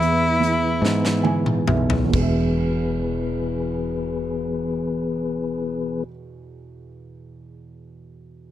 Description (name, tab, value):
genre	six-eight pop ballad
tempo	43-51 BPM (dotted quarters)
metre	6/8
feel	straight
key	E major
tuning	A4 = 440 Hz
part	clear cello	melody	0.0-1.3 s	E4	-22 LUFS	left 2 dB	none
part	dark upright piano	accompaniment	0.0-8.5 s	E2 to G#5	-27 LUFS	right 6 dB	none
part	mellow tonewheel organ	sustained chords	0.0-6.0 s	E3 to B4	-25 LUFS	left 4 dB	fast rotary speaker
part	woody fretless electric bass	bass	0.0-6.0 s	E1 to G#2	-25 LUFS	equal	none
part	huge arena drum kit	drums	0.0-2.4 s	crash cymbal, hi-hat, kick drum, snare drum, toms	-25 LUFS	left 1 dB	none
room	little or no reverb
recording	dry, close 1970s-style studio recording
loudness	-20 LUFS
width	side -12 dB against mid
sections	0.0-2.1 A section; 2.1-7.7 B section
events	slowing down 0.0-2.1; drum fill 0.8-2.1; upright piano fill 0.8-2.1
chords	0.0 E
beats	0.83 | 2.14 3.53 | 4.93 6.32